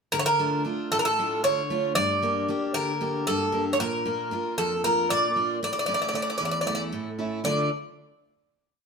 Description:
greek folk, Greek bouzouki band; 230 BPM (eighths); 7/8; straight; D harmonic minor; A4 = 439 Hz
Greek bouzouki; melody; 0.1-7.7 s; A4 to D5; -24 LUFS; equal
picked steel-string acoustic guitar; accompaniment; 0.1-7.7 s; E2 to A4; -29 LUFS; right 1 dB
moderate stone room reverb, RT60 1.1 s; band playing live in one room; -23 LUFS; side -5 dB against mid
0.1-7.4 A section; 7.4-8.9 final chord
0.1 Dm; 2.0 Gm; 3.8 Bb; 5.6 A; 7.4 Dm
| 0.12 0.39 0.65 0.91 1.18 1.44 1.70 | 1.96 2.22 2.48 2.75 3.01 3.27 3.53 | 3.79 4.05 4.32 4.58 4.84 5.10 5.36 | 5.62 5.88 6.14 6.40 6.66 6.92 7.18 | 7.45

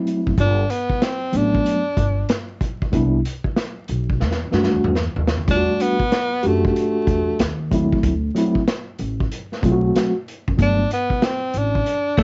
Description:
hip hop, jazz-hop; 94 BPM; 4/4; swing 65% on 16ths; E minor; A4 = 437 Hz
mellow tine electric piano; accompaniment; 0.0-10.8 s; F#3 to G4; -22 LUFS; equal; cassette tape
vintage drum kit; drums; 0.1-12.2 s; hi-hat, kick drum, snare drum, toms; -25 LUFS; equal; vintage 12-bit sampler grit, cassette tape
upright bass; bass; 0.3-12.2 s; F#1 to F#2; -25 LUFS; equal; tube saturation
breathy tenor saxophone; melody; 0.4-12.2 s; A3 to D4; -24 LUFS; equal; cassette tape
clean electric guitar; second line; 12.2 s; A3; -18 LUFS; equal; analog chorus, cassette tape
light reverb; home recording on cassette, vinyl crackle, nothing above 7.7 kHz; -20 LUFS; mono
0.0-5.5 A section; 5.5-12.2 A section
drum fill 4.2-5.5
0.4 Gmaj9; 2.9 Cmaj9; 4.2 Em11; 7.4 D#dim7; 8.0 D7 (rootless); 10.6 Gmaj9
| 0.38 1.02 1.65 2.29 | 2.93 3.57 4.21 4.85 | 5.48 6.12 6.76 7.40 | 8.04 8.68 9.31 9.95 | 10.59 11.23 11.87

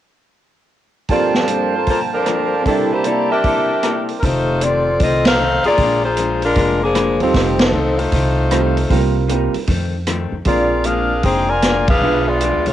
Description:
jazz, big band swing; 154 BPM; 4/4; swing 65% on 8ths; F mixolydian; A4 = 440 Hz
warm saxophone section; melody; 1.1-12.7 s; F3 to Ab5; -17 LUFS; left 2 dB; cassette tape
vintage hollow-body jazz guitar; accompaniment; 1.1-12.7 s; F2 to A4; -26 LUFS; left 8 dB; cassette tape
warm baby grand piano; accompaniment; 1.1-4.3, 7.2-12.7 s; G2 to D5; -22 LUFS; right 9 dB; cassette tape
warm trumpet section; stabs; 1.1-4.2 s; C5 to A5; -22 LUFS; right 8 dB; cassette tape
vintage drum kit; drums; 1.1-12.7 s; hi-hat, kick drum, ride cymbal, rim click, snare drum; -20 LUFS; right 1 dB
upright bass; bass; 4.2-12.7 s; F1 to F2; -21 LUFS; equal
light reverb, small room ambience; home recording on cassette; -14 LUFS; side -12 dB against mid
1.1-4.2 A section; 4.2-12.7 B section
band accent 5.2, 7.5, 11.8
1.1 Gm11; 2.7 C13; 4.2 F7; 5.8 Bb7; 7.3 F7; 8.9 Cm7; 9.7 F7; 10.5 Bb7; 12.0 Bdim7
| 1.10 1.49 1.88 2.27 | 2.66 3.05 3.44 3.83 | 4.22 4.62 5.00 5.39 | 5.79 6.17 6.57 6.96 | 7.34 7.73 8.12 8.51 | 8.90 9.29 9.68 10.07 | 10.46 10.85 11.24 11.63 | 12.02 12.41

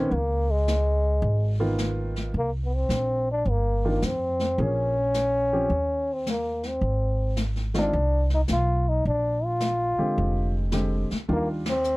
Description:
jazz, small-group swing and bop; 107 BPM; 4/4; swing 67% on 8ths; A4 = 443 Hz
trombone with cup mute; melody; 0.0-12.0 s; Ab3 to F4; -26 LUFS; left 1 dB
warm baby grand piano; accompaniment; 0.0-11.6 s; D3 to Ab4; -28 LUFS; equal
upright bass; bass; 0.0-12.0 s; F1 to F2; -26 LUFS; equal
jazz brush drum kit; drums; 0.1-12.0 s; brushed snare drum, hi-hat, ride cymbal, snare drum; -33 LUFS; left 1 dB
little or no reverb; -22 LUFS; side -22 dB against mid
0.0-12.0 A section
band accent 11.6
0.1 Db13; 2.3 C7sus4; 4.6 Bbm7; 5.7 Cm7/Eb; 6.8 Ab; 9.1 Bb13; 11.3 Ebmaj9
| 0.11 0.67 1.23 1.79 | 2.35 2.90 3.46 4.02 | 4.58 5.14 5.70 6.26 | 6.82 7.38 7.93 8.49 | 9.05 9.61 10.17 10.73 | 11.29 11.85

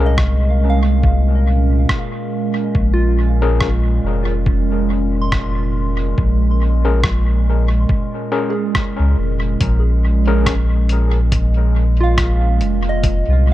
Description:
ambient dub; 70 BPM; 4/4; swing 57% on 16ths; Bb minor; A4 = 440 Hz
warbly tape-like pad; sustained chords; 0.0-13.5 s; Bb2 to Bb4; -22 LUFS; right 2 dB; chorus, built-in reverb, phaser
soft synth bell; arpeggios; 0.0-13.5 s; F4 to C6; -27 LUFS; right 2 dB; chorus, phaser, dub echo
overdriven tine electric piano; stabs; 0.0-10.5 s; Db4 to Bb4; -25 LUFS; left 6 dB; medium tremolo, dub echo
soft dub sub bass; bass; 0.0-13.5 s; F1 to Db2; -15 LUFS; equal
electronic kick drum; drums; 0.2-13.2 s; -19 LUFS; equal
lo-fi sampler-style drum kit; drums; 0.2-13.2 s; hi-hat, rim click; -26 LUFS; equal; dub echo
digital ambience; -14 LUFS; side -15 dB against mid
0.0-13.5 A section
0.0 Bbm7
0.18 1.04 1.89 | 2.75 3.61 4.46 5.32 | 6.18 7.04 7.89 8.75 | 9.61 10.46 11.32 12.18 | 13.04

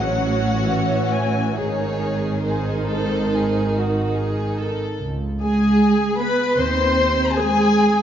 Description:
classical, slow romantic movement for string orchestra; 68-78 BPM; 4/4; rubato; C# minor; A4 = 440 Hz
warm chamber violin section; melody; 0.0-8.0 s; B#4 to B#5; -26 LUFS; left 6 dB
warm studio violin section; second line; 0.0-8.0 s; F#4 to C#5; -26 LUFS; left 2 dB
warm chamber viola section; accompaniment; 0.0-8.0 s; D#3 to B#4; -24 LUFS; right 1 dB
dark chamber cello section; bass; 0.0-8.0 s; G#2 to B#3; -22 LUFS; right 2 dB
warm chamber double bass section; bass; 0.0-7.2 s; G#1 to D#2; -26 LUFS; right 2 dB
moderate concert hall reverb, RT60 1.9 s; nothing above 7.5 kHz; -18 LUFS; side -9 dB against mid
0.0-5.0 A section; 5.0-8.0 B section
0.0 F#m/A; 1.6 G#; 5.0 C#5; 6.6 G#/D#
0.72 | 1.57 2.46 3.33 4.17 | 5.01 5.80 6.58 7.35

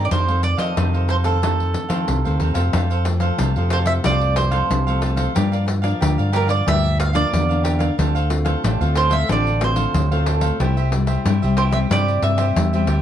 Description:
samba and choro; 92 BPM; 4/4; straight; F major; A4 = 441 Hz
mandolin; melody; 0.0-12.9 s; A4 to F5; -22 LUFS; right 4 dB
cavaquinho; accompaniment; 0.0-13.0 s; D4 to F5; -26 LUFS; right 2 dB
nylon-string guitar; accompaniment; 0.0-13.0 s; F2 to F4; -25 LUFS; left 3 dB
mellow fretless electric bass; bass; 0.0-13.0 s; A1 to F3; -19 LUFS; equal
pandeiro; percussion; 0.1-13.0 s; -26 LUFS; left 4 dB
light reverb; dark, warm production; -16 LUFS; side -10 dB against mid
0.0-2.7 A section; 2.7-13.0 B section
0.1 F7; 2.7 F; 5.4 Gm7; 8.0 Dm7; 10.6 C
| 0.12 0.78 1.43 2.09 | 2.74 3.40 4.05 4.71 | 5.37 6.02 6.68 7.33 | 7.99 8.64 9.30 9.95 | 10.61 11.26 11.91 12.57

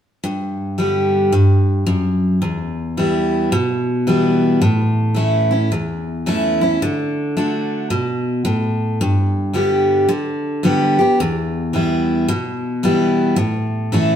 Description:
country; 110 BPM; 4/4; swing 63% on 8ths; G major; A4 = 440 Hz
picked steel-string acoustic guitar; solo; 0.2-14.2 s; E2 to G4; -15 LUFS; equal
wet stone room reverb, RT60 1.3 s; band playing live in one room; -15 LUFS; side -9 dB against mid
0.2-9.0 A section; 9.0-14.2 B section
0.2 G; 2.4 Em; 4.6 A; 6.8 D; 9.0 G; 11.2 Em; 13.4 A
| 0.25 0.79 1.34 1.89 | 2.44 2.98 3.53 4.08 | 4.63 5.17 5.72 6.27 | 6.82 7.37 7.91 8.46 | 9.01 9.56 10.10 10.65 | 11.20 11.74 12.29 12.84 | 13.39 13.93

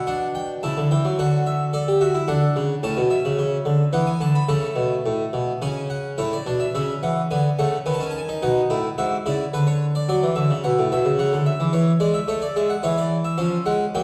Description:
classical, baroque-style 3-part fugue for harpsichord; 108 BPM; 3/4; straight; D major; A4 = 441 Hz
harpsichord; solo; 0.0-14.0 s; G#2 to B5; -22 LUFS; equal
wet recital hall reverb, RT60 1.4 s; heard from further back in the room, vinyl crackle; -22 LUFS; mono
0.0-6.2 A section; 6.2-14.0 B section
0.0 D; 0.6 A/C#; 2.8 A; 3.9 E; 4.5 A; 5.6 C#sus4; 6.2 A; 7.3 D; 7.9 B7/D#; 9.0 E/G#; 9.5 D; 10.6 A69; 11.2 C#m; 12.3 F#m7/A; 12.8 C#m/E; 13.4 C#/E#
0.08 0.63 | 1.19 1.74 2.29 | 2.84 3.39 3.94 | 4.49 5.05 5.61 | 6.17 6.74 7.30 | 7.86 8.42 8.98 | 9.53 10.09 10.65 | 11.20 11.74 12.29 | 12.83 13.39 13.95

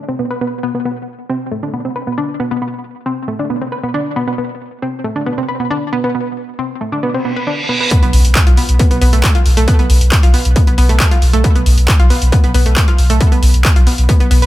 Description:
driving peak-time techno; 136 BPM; 4/4; straight; A4 = 440 Hz
analog pluck; riff; 0.1-14.5 s; A3 to B4; -18 LUFS; equal; chorus, sidechain pumping, tape echo
reverse cymbal and impact; sound effects; 7.3-9.7 s; -21 LUFS; right 1 dB
electronic kick drum; drums; 7.9-14.2 s; -11 LUFS; equal; overdrive
techno drum kit; drums; 7.9-14.5 s; handclaps, hi-hat; -19 LUFS; equal; overdrive, sidechain pumping on hats
warm sub bass; bass; 8.0-14.5 s; B1; -11 LUFS; equal; sidechain pumping, low-pass filter
digital ambience; echo-heavy mix; -11 LUFS; side -15 dB against mid
0.0-7.9 A section; 7.9-14.5 B section
filter sweep on synth arpeggio sound 0.0-7.9; reverse cymbal 7.3-7.9; drop 7.9-14.5; impact 7.9-9.7
0.0 Bm; 7.9 Asus2/B
0.41 | 0.85 1.29 1.74 2.18 | 2.62 3.06 3.50 3.94 | 4.38 4.82 5.26 5.71 | 6.15 6.59 7.03 7.47 | 7.91 8.35 8.79 9.24 | 9.68 10.12 10.56 11.00 | 11.44 11.88 12.32 12.77 | 13.21 13.65 14.09

